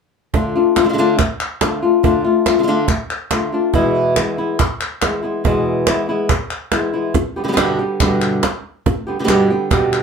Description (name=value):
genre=flamenco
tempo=141 BPM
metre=4/4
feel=straight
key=unclear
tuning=A4 = 439 Hz
part: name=flamenco guitar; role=melody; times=0.3-10.0 s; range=E2 to G4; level=-16 LUFS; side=left 2 dB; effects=none
part: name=cajon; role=percussion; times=0.3-10.0 s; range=none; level=-19 LUFS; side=right 4 dB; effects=none
part: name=palmas hand claps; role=percussion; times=0.8-10.0 s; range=none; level=-23 LUFS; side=left 3 dB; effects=none
room=wet studio reverb, RT60 0.5 s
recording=heard from further back in the room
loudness=-15 LUFS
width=side -6 dB against mid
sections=0.3-10.0 A section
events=none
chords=0.3 Dm; 3.7 E; 7.2 G